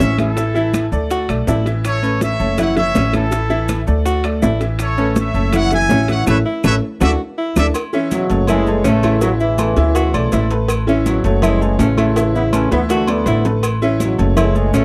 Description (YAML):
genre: latin, salsa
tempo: 163 BPM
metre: 4/4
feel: straight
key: A major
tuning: A4 = 440 Hz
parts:
  - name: bright trumpet section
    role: melody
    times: 0.0-7.7 s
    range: E4 to G#5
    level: -23 LUFS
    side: equal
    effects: none
  - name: clear alto saxophone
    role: second line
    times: 0.0-14.8 s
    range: C#4 to F#4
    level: -23 LUFS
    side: equal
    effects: none
  - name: bright upright piano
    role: accompaniment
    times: 0.0-14.8 s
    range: E3 to E5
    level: -23 LUFS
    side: equal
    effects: none
  - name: upright bass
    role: bass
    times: 0.0-14.8 s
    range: F#1 to D2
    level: -21 LUFS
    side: equal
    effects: none
  - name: bongos and cowbell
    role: percussion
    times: 0.0-14.8 s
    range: none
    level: -27 LUFS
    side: equal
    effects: none
  - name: congas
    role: percussion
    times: 0.0-14.8 s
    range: none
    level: -26 LUFS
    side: equal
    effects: none
  - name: maracas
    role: percussion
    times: 0.0-14.8 s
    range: none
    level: -38 LUFS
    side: equal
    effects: none
  - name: timbales and agogo bells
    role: percussion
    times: 0.0-14.8 s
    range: none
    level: -30 LUFS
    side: equal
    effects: none
  - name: claves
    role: percussion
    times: 0.2-14.6 s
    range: none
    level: -36 LUFS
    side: equal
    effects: none
  - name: mellow trombone section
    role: melody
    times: 8.1-14.8 s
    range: B2 to C#4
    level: -23 LUFS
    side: equal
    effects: none
room: small room ambience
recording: dry, close 1970s-style studio recording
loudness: -16 LUFS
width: mono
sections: 0.0-7.7 A section; 7.7-14.8 B section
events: drum fill 6.3-7.7, 12.7-13.6; band accent 6.3-7.7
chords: 0.4 A5; 1.1 Dsus2; 1.8 Aadd9; 2.6 F#m7; 3.3 A5; 4.8 Aadd9; 5.5 F#m7; 6.3 Aadd9; 7.0 Dsus2; 7.7 Aadd9; 11.4 F#m7; 12.2 Aadd9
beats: 0.00 | 0.37 0.74 1.11 1.48 | 1.85 2.22 2.59 2.96 | 3.33 3.69 4.06 4.43 | 4.80 5.17 5.54 5.91 | 6.28 6.64 7.01 7.38 | 7.75 8.12 8.48 8.85 | 9.22 9.59 9.96 10.32 | 10.69 11.06 11.43 11.79 | 12.16 12.53 12.90 13.27 | 13.63 14.00 14.37 14.74